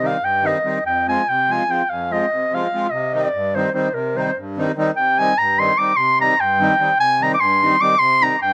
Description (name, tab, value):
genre	balkan folk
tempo	293 BPM (eighths)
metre	5/8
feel	straight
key	C minor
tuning	A4 = 441 Hz
part	warm clarinet	melody	0.0-8.5 s	Bb4 to D6	-19 LUFS	equal	analog delay
part	accordion	accompaniment	0.0-8.5 s	F2 to F4	-25 LUFS	equal	none
room	light reverb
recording	close, detailed microphones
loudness	-18 LUFS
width	mono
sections	0.0-5.0 A section; 5.0-8.5 B section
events	speeding up 0.0-8.5; clarinet solo 0.0-5.0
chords	0.0 Cm; 0.8 Fm; 2.9 Cm